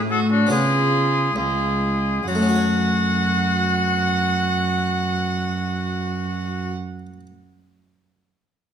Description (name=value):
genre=classical, baroque-style sonata movement with continuo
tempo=65-76 BPM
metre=4/4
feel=rubato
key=F# minor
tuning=A4 = 436 Hz
part: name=harpsichord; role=accompaniment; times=0.0-7.3 s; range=C#2 to C#5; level=-25 LUFS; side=left 3 dB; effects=none
part: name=dark cello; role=bass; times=0.0-6.7 s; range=C#2 to C#3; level=-23 LUFS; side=right 3 dB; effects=none
part: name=bright oboe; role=melody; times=0.1-6.7 s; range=F#4 to A4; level=-24 LUFS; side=left 5 dB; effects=none
part: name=warm violin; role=second line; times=0.1-6.7 s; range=D4 to F#5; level=-26 LUFS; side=right 6 dB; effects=none
room=wet recital hall reverb, RT60 1.5 s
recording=none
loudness=-19 LUFS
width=side -8 dB against mid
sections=0.0-2.3 A section; 2.3-6.0 B section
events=slowing down 0.0-2.3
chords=0.0 F#m; 0.5 C#7; 2.3 F#m